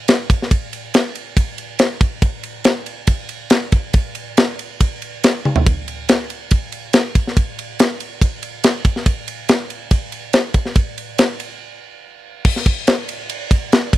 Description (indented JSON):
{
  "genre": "metal",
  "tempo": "141 BPM",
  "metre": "4/4",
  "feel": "straight",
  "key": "none",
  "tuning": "none",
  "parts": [
    { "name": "tight metal drum kit", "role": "drums", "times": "0.1-14.0 s", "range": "crash cymbal, kick drum, ride cymbal, snare drum, toms", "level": "-16 LUFS", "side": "equal", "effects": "none" }
  ],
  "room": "little or no reverb",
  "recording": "dry, close 1970s-style studio recording",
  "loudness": "-16 LUFS",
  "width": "side -15 dB against mid",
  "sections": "0.0-12.5 A section; 12.5-14.0 B section",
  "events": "drum fill 5.4; break 11.6-12.5",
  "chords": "none"
}